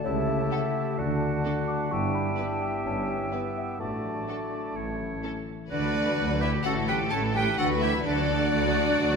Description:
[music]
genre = cinematic, playful, whimsical film cue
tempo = 128 BPM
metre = 4/4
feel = straight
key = D major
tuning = A4 = 440 Hz
[part]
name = worn celesta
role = melody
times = 0.0-5.2 s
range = C#5 to D6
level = -37 LUFS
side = left 7 dB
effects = none
[part]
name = clear clarinet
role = second line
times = 0.0-9.2 s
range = D4 to A4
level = -34 LUFS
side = right 2 dB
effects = none
[part]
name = silver concert flute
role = second line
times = 0.0-9.2 s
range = D5 to A5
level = -35 LUFS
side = left 1 dB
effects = none
[part]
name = mellow French horn section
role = sustained chords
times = 0.0-9.2 s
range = E3 to G4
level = -36 LUFS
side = left 4 dB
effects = none
[part]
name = concert harp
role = arpeggios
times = 0.0-9.2 s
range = G2 to G4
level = -34 LUFS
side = left 8 dB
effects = none
[part]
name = clear oboe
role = second line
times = 0.1-9.2 s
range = F#4 to F#5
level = -35 LUFS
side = right 3 dB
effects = none
[part]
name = clear bassoon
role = accompaniment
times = 0.1-5.5 s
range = A3 to E4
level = -35 LUFS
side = right 3 dB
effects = none
[part]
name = clear studio double bass section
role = bass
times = 0.1-9.2 s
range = G1 to D2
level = -35 LUFS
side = right 6 dB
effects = none
[part]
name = dark studio cello section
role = bass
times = 0.1-9.2 s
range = D2 to D3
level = -33 LUFS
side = right 2 dB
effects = none
[part]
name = clear studio violin section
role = melody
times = 0.5-9.2 s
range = F#4 to B4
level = -34 LUFS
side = left 4 dB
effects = none
[part]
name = rich studio violin section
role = second line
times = 0.5-9.2 s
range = E4 to A5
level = -31 LUFS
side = left 3 dB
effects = none
[part]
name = rich studio viola section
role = accompaniment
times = 0.5-9.2 s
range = E3 to F#4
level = -35 LUFS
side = right 4 dB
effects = none
[sound]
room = wet scoring stage reverb, RT60 2.0 s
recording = none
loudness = -25 LUFS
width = side -5 dB against mid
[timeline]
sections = 0.0-5.7 A section; 5.7-9.2 B section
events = none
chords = 0.1 A7/C#; 1.0 D; 1.9 Em/G; 3.8 D/A; 4.8 A; 5.7 D; 6.7 A7; 7.6 D

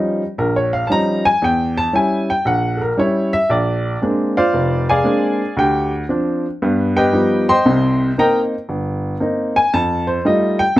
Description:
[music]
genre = solo jazz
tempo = 116 BPM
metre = 4/4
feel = swing 67% on 8ths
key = Bb mixolydian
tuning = A4 = 440 Hz
[part]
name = warm upright piano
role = solo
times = 0.0-10.8 s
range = F1 to C6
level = -15 LUFS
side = equal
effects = none
[sound]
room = light reverb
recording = close, detailed microphones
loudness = -15 LUFS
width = side -16 dB against mid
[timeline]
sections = 0.0-10.8 A section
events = upright piano solo 0.0-10.8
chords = 0.0 Eb9; 1.4 Edim7; 3.5 Bb9; 5.6 Dmadd11; 6.6 Gaug7; 7.6 Cm7; 9.7 F9

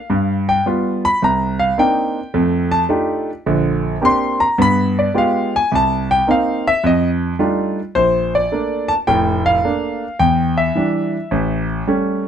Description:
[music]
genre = solo jazz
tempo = 107 BPM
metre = 4/4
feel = swing 67% on 8ths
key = Bb major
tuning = A4 = 440 Hz
[part]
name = clear concert grand piano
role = solo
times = 0.0-12.3 s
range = F1 to C6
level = -15 LUFS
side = equal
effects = none
[sound]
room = light reverb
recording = close, detailed microphones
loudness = -15 LUFS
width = side -8 dB against mid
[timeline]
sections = 0.0-8.0 A section; 8.0-12.3 B section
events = grand piano solo 0.0-8.0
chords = 0.1 G7; 1.2 Cm9; 2.3 F13; 3.5 Bb69; 4.6 G7b9; 5.7 Cm7; 6.8 F13; 8.0 Bbmaj7; 10.2 Em7; 11.3 A7

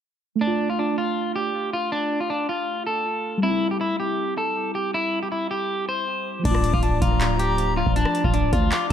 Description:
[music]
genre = hip hop, trap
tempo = 159 BPM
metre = 4/4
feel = half-time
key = D minor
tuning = A4 = 440 Hz
[part]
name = electric guitar at the edge of break-up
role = melody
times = 0.4-8.9 s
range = D4 to C5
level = -24 LUFS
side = equal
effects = low-pass filter, analog delay
[part]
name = muted felt-like synth keys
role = accompaniment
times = 0.4-8.9 s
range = F3 to F4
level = -28 LUFS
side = right 1 dB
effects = chorus, low-pass filter, analog delay
[part]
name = silver concert flute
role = second line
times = 6.5-8.9 s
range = A5 to D6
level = -29 LUFS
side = left 8 dB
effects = analog delay
[part]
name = hollow soft pad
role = sustained chords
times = 6.5-8.9 s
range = F3 to D5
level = -30 LUFS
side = equal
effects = ensemble chorus
[part]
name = growling 808-style bass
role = bass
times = 6.5-8.9 s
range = D1 to D2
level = -24 LUFS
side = equal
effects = none
[part]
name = booming analog drum machine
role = drums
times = 6.5-8.9 s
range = crash cymbal, handclaps, hi-hat, kick drum, rim click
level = -24 LUFS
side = equal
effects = none
[sound]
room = digital ambience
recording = echo-heavy mix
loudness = -21 LUFS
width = side -9 dB against mid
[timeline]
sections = 0.4-6.5 A section; 6.5-8.9 B section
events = none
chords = 0.4 Dm; 3.4 C; 6.5 Dm

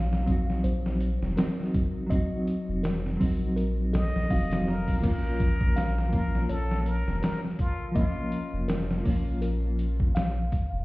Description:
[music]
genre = trip hop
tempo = 82 BPM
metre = 4/4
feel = swing 57% on 16ths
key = Bb minor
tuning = A4 = 441 Hz
[part]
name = mellow electric guitar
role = accompaniment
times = 0.0-10.1 s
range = F3 to Gb4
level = -30 LUFS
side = equal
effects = tremolo, vintage 12-bit sampler grit, tape echo
[part]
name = music box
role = arpeggios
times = 0.0-10.8 s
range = A4 to F5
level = -39 LUFS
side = left 1 dB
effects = tape echo
[part]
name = round analog bass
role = bass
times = 0.0-10.8 s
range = F1 to Bb1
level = -28 LUFS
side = equal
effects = none
[part]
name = trip hop sampler-style drum kit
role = drums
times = 0.1-10.7 s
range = crash cymbal, hi-hat, kick drum, snare drum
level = -28 LUFS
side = equal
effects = none
[part]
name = trumpet with plunger mute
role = melody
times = 3.9-8.6 s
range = F4 to Eb5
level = -36 LUFS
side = equal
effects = tape echo
[sound]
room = little or no reverb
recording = heard muffled through a wall, stone room reverb, vinyl crackle, EQ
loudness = -25 LUFS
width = side -20 dB against mid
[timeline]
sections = 0.0-5.0 A section; 5.0-10.8 B section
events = filter sweep on music box 0.0-5.0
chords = 0.0 Cdim; 5.0 Bbm

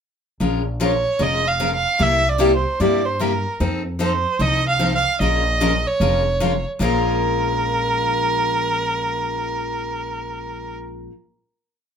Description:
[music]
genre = acoustic string swing (jazz manouche)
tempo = 150 BPM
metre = 4/4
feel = swing 62% on 8ths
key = Bb minor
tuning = A4 = 440 Hz
[part]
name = picked steel-string acoustic guitar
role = accompaniment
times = 0.4-11.1 s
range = Bb2 to Bb4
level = -22 LUFS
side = left 3 dB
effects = none
[part]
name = upright bass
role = bass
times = 0.4-11.1 s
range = F1 to G2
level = -25 LUFS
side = equal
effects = none
[part]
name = warm violin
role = melody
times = 0.8-10.8 s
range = Bb4 to F5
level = -20 LUFS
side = right 3 dB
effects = none
[sound]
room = moderate studio reverb, RT60 0.6 s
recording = minimal, uncompressed stereo recording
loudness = -18 LUFS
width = side -7 dB against mid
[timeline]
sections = 0.4-6.8 A section; 6.8-10.0 final chord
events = none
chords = 0.4 Bbm7; 2.0 C7; 3.6 F7; 5.2 Bbm7

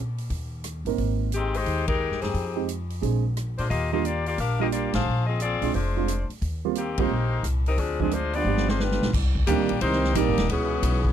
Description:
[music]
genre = jazz, big band swing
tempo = 177 BPM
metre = 4/4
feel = swing 65% on 8ths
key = Eb major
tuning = A4 = 444 Hz
[part]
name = upright bass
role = bass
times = 0.0-11.1 s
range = Eb1 to Bb2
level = -26 LUFS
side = equal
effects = none
[part]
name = swinging big-band drum kit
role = drums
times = 0.2-11.1 s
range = crash cymbal, hi-hat, kick drum, ride cymbal, rim click, snare drum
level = -31 LUFS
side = equal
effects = none
[part]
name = warm concert grand piano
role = accompaniment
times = 0.9-10.4 s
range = Eb3 to Bb4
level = -28 LUFS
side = right 19 dB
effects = none
[part]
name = bright saxophone section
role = melody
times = 1.3-11.1 s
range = Eb3 to F5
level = -27 LUFS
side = left 5 dB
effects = none
[part]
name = warm trombone section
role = second line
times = 8.3-11.1 s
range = Bb2 to D4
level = -30 LUFS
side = right 5 dB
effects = none
[sound]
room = little or no reverb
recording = dry, close 1970s-style studio recording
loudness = -23 LUFS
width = side -10 dB against mid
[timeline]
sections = 0.0-9.1 A section; 9.1-11.1 B section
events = band accent 1.8, 4.9, 6.9; drum fill 8.5-9.1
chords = 0.3 Eb6; 1.0 Abmaj7; 2.3 Fm9; 3.0 Bb9; 3.7 Ebmaj9; 5.1 Bb9; 6.4 Eb6; 7.8 Dm7b5; 8.5 G7; 9.1 Cm9; 10.5 Dbm7

